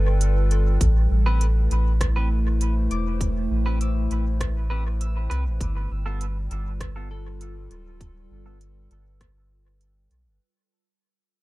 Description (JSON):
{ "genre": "ambient dub", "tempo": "100 BPM", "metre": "4/4", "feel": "straight", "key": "A minor", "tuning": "A4 = 440 Hz", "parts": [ { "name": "warbly tape-like pad", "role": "sustained chords", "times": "0.0-10.4 s", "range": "G3 to G5", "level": "-33 LUFS", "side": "equal", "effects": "chorus, built-in reverb, phaser" }, { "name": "concert harp", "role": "arpeggios", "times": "0.0-9.3 s", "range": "A4 to E6", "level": "-41 LUFS", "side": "left 6 dB", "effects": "low-pass filter, dub echo" }, { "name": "soft dub sub bass", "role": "bass", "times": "0.0-10.4 s", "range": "D1 to C2", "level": "-22 LUFS", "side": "equal", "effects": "none" }, { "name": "organic electronic drum kit", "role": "drums", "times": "0.2-10.2 s", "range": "hi-hat, rim click", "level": "-35 LUFS", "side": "right 2 dB", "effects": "dub echo" }, { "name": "electronic kick drum", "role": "drums", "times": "0.8-9.3 s", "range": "none", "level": "-27 LUFS", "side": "equal", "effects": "none" }, { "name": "clean electric guitar", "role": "stabs", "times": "1.3-8.6 s", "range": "B3 to B4", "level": "-36 LUFS", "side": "right 1 dB", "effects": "wide subtle chorus, low-pass filter, dub echo" } ], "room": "little or no reverb", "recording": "echo-heavy mix", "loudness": "-21 LUFS", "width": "side -19 dB against mid", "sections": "0.8-10.4 A section", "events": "fade-out 0.8-10.4; filter sweep on clean electric guitar 0.8-10.4", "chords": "0.0 G7; 0.8 Am7; 5.6 G7", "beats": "0.21 | 0.81 1.41 2.01 2.61 | 3.21 3.81 4.41 5.01 | 5.61 6.21 6.81 7.41 | 8.01 8.61 9.21 9.81" }